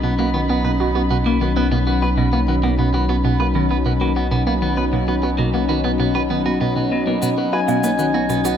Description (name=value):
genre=ambient, sequencer-driven space music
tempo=98 BPM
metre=4/4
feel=straight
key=B major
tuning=A4 = 439 Hz
part: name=sweeping resonant pad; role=sustained chords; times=0.0-8.6 s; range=Gb3 to B5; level=-20 LUFS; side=left 2 dB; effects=wide subtle chorus
part: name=clean electric guitar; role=arpeggios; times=0.0-8.6 s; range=B2 to B4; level=-25 LUFS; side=moving between left 1 dB and right 7 dB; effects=auto-pan, shimmer reverb, tape echo
part: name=hollow square pluck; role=riff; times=0.0-8.6 s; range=B2 to F#4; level=-22 LUFS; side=right 2 dB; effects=chorus, phaser, cassette tape, tape echo
part: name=round analog bass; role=bass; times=0.0-8.6 s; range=B1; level=-23 LUFS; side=equal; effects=none
part: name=cabasa and woodblock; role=percussion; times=7.2-8.6 s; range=none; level=-29 LUFS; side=right 4 dB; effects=tape echo
part: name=expressive portamento lead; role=melody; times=7.5-8.6 s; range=F#5 to G#5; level=-23 LUFS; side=left 3 dB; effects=chorus, shimmer reverb
room=moderate plate reverb, RT60 2.9 s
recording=echo-heavy mix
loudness=-16 LUFS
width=side -8 dB against mid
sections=0.0-8.6 A section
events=none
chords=0.0 Badd9